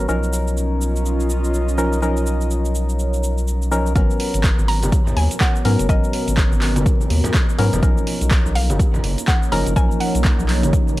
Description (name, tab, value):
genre	deep house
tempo	124 BPM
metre	4/4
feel	swing 59% on 16ths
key	G# dorian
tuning	A4 = 440 Hz
part	deep dark ambient pad	sustained chords	1.3-11.0 s	E#3 to D#6	-29 LUFS	right 1 dB	chorus, built-in reverb, sidechain pumping
part	percussive organ stab	stabs	0.0-11.0 s	E#3 to A#4	-24 LUFS	left 1 dB	chorus, sidechain pumping, analog delay
part	round analog bass	bass	0.0-11.0 s	F#1 to G#2	-20 LUFS	equal	sidechain pumping
part	airy breathy pad	texture	0.0-4.0 s	B3 to A#5	-27 LUFS	equal	chorus, sidechain pumping
part	punchy analog drum machine	drums	0.1-11.0 s	cabasa, handclaps, hi-hat	-27 LUFS	right 1 dB	overdrive
part	electronic kick drum	drums	4.0-10.8 s	none	-18 LUFS	equal	overdrive
part	mallet-like synth pluck	melody	4.7-10.9 s	D#5 to A#5	-27 LUFS	equal	chorus, tape echo
part	congas	percussion	4.8-11.0 s	none	-26 LUFS	equal	sidechain pumping on perc
room	little or no reverb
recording	dry, gritty hardware recording, vinyl crackle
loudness	-16 LUFS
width	side -17 dB against mid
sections	0.0-4.0 A section; 4.0-11.0 B section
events	drop 4.0-11.0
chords	0.1 Bmaj9#11; 4.0 G#m11; 7.8 Bmaj9#11